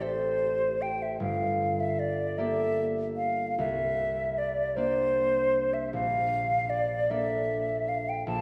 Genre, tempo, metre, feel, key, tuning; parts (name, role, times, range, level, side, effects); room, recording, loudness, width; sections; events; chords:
classical, impressionist duo for flute and harp; 51 BPM (dotted quarters); 6/8; rubato; A4 = 440 Hz
hollow concert flute; melody; 0.0-8.4 s; C5 to A5; -30 LUFS; equal
concert harp; accompaniment; 0.0-8.4 s; G1 to D5; -35 LUFS; equal
wet concert hall reverb, RT60 2.4 s; heard from further back in the room; -28 LUFS; mono
0.0-8.4 A section
0.0 Am7; 1.2 Gmadd9; 3.6 C9; 5.9 Bbmaj7